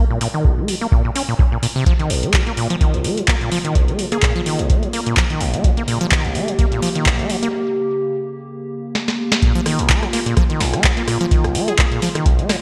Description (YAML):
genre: acid house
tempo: 127 BPM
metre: 4/4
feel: swing 55% on 16ths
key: Bb dorian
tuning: A4 = 440 Hz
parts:
  - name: deep acid bass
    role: riff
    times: 0.0-12.6 s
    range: Bb1 to Db4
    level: -23 LUFS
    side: equal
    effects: sidechain pumping, delay
  - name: booming analog drum machine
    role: drums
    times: 0.2-12.6 s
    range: handclaps, hi-hat, rim click, snare drum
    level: -24 LUFS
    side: equal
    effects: studio reverb
  - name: electronic kick drum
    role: drums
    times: 0.4-12.4 s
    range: none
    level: -19 LUFS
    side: equal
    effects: studio reverb
  - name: warbly tape-like pad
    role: sustained chords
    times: 2.5-12.6 s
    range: Db3 to G4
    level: -27 LUFS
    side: equal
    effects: chorus, built-in reverb, sidechain pumping
  - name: glassy wavetable pluck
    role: melody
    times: 4.1-4.3, 11.7-11.9 s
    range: Ab4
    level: -29 LUFS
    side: equal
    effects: chorus, delay
room: moderate lush hall reverb, RT60 1.7 s, digital ambience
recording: bright 1980s-style digital production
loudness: -18 LUFS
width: mono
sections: 0.0-9.4 A section; 9.4-12.6 B section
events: break 7.5-9.4; drum fill 8.9-9.4; drop 9.4-12.6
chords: 0.0 Bbm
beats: 0.45 0.92 1.39 | 1.86 2.34 2.81 3.28 | 3.75 4.23 4.70 5.17 | 5.64 6.12 6.59 7.06 | 7.53 8.01 8.48 8.95 | 9.42 9.89 10.37 10.84 | 11.31 11.79 12.26